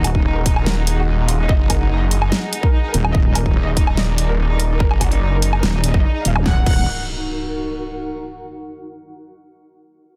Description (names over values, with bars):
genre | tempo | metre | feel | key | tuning
heavy wobble dubstep | 145 BPM | 4/4 | half-time | Eb harmonic minor | A4 = 440 Hz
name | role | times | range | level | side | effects
clear symphonic violin section | melody | 0.0-6.8 s | Eb4 to Gb5 | -29 LUFS | equal | tape echo
supersaw pad | sustained chords | 0.0-6.7 s | Eb4 to Gb5 | -33 LUFS | equal | sidechain pumping, low-pass filter
wobble bass | bass | 0.0-0.2, 2.9-6.9 s | Eb1 | -21 LUFS | equal | chorus, overdrive
dubstep drum kit | drums | 0.0-6.7 s | crash cymbal, hi-hat, snare drum, woodblock | -25 LUFS | equal | small room ambience
electronic kick drum | drums | 0.1-6.7 s | none | -19 LUFS | equal | small room ambience
snarling distorted saw bass | bass | 0.2-6.0 s | Eb1 to Gb1 | -20 LUFS | equal | distortion, overdrive
zap and impact | sound effects | 6.4-8.1 s | none | -31 LUFS | equal | none
granular cloud pad | texture | 6.9-8.1 s | Eb4 to Gb5 | -31 LUFS | equal | built-in reverb, sidechain pumping
room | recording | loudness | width
little or no reverb | dense, heavily limited modern master | -18 LUFS | mono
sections
0.0-6.5 A section; 6.5-8.1 B section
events
drop 0.0-6.5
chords
0.0 Ebm